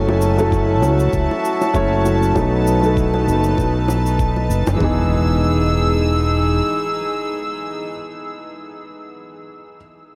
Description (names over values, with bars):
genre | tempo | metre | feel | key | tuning
sunset chillout | 98 BPM | 4/4 | swing 55% on 16ths | E major | A4 = 439 Hz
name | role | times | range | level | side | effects
warm concert grand piano | accompaniment | 0.0-9.8 s | E3 to C#5 | -23 LUFS | equal | delay
rich studio string section | sustained chords | 0.0-7.9 s | D#4 to E6 | -25 LUFS | equal | none
fingered electric bass | bass | 0.0-6.6 s | E1 to C#2 | -21 LUFS | equal | none
bongos | percussion | 0.1-4.8 s | none | -30 LUFS | equal | none
cabasa | drums | 0.2-4.8 s | none | -39 LUFS | equal | none
electronic kick drum | drums | 0.5-4.9 s | none | -25 LUFS | equal | none
impact | sound effects | 4.8-8.0 s | none | -32 LUFS | equal | none
room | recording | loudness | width
moderate huge ambient reverb, RT60 8.6 s | dreamy mix soaked in reverb | -18 LUFS | mono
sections
0.0-4.8 A section; 4.8-7.3 B section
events
none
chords
0.0 F#m7; 2.4 B7; 4.8 Emaj7